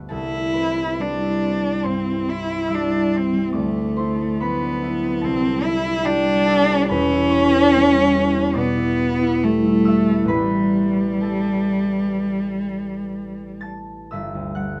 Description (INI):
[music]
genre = classical, impressionist duo for cello and harp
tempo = 57-75 BPM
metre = 4/4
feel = rubato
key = C major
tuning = A4 = 440 Hz
[part]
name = concert harp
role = accompaniment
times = 0.0-14.8 s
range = E1 to A6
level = -24 LUFS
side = equal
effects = none
[part]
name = warm cello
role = melody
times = 0.1-13.6 s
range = G3 to E4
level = -22 LUFS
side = equal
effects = none
[sound]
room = light reverb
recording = close, detailed microphones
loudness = -20 LUFS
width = mono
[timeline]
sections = 0.1-14.1 A section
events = none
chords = 0.1 Cmaj7; 3.6 D13; 5.2 Cadd9; 6.9 Emadd9; 10.3 A9; 14.1 G69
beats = | 0.12 1.01 1.86 2.72 | 3.56 4.41 5.25 6.06 | 6.89 7.73 8.56 9.41 | 10.30 11.22 12.15 13.12 | 14.10